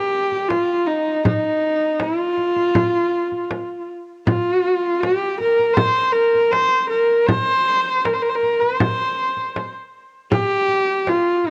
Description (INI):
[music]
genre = mongolian traditional, Mongolian folk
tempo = 79 BPM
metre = 4/4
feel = straight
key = C yu mode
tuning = A4 = 439 Hz
[part]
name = rich horsehead fiddle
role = melody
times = 0.0-11.5 s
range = Eb4 to C5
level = -20 LUFS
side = equal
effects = analog delay
[part]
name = frame drum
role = percussion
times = 0.3-11.5 s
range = none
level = -24 LUFS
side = equal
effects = none
[sound]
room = moderate studio reverb, RT60 0.6 s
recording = worn, warbling old tape, cassette tape, warbly pitch drift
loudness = -19 LUFS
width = mono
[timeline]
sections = 0.0-10.3 A section; 10.3-11.5 B section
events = none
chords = none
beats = 0.49 | 1.25 2.00 2.76 3.52 | 4.27 5.03 5.79 6.54 | 7.30 8.06 8.81 9.57 | 10.32 11.08